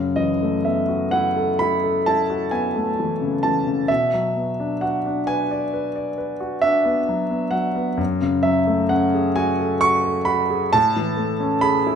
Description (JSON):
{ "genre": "classical, impressionist solo piano", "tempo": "44 BPM (dotted quarters)", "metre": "9/8", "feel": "rubato", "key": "F# minor", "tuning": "A4 = 440 Hz", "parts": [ { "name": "clear grand piano", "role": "solo", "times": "0.0-12.0 s", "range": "F#2 to C#6", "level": "-18 LUFS", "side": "equal", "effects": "none" } ], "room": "moderate recital hall reverb, RT60 1.3 s", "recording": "minimal, uncompressed stereo recording", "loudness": "-18 LUFS", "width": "side -7 dB against mid", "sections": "0.0-12.0 A section", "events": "none", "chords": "0.0 F#m11; 3.9 Bm6; 8.0 F#madd9; 10.7 Amaj7" }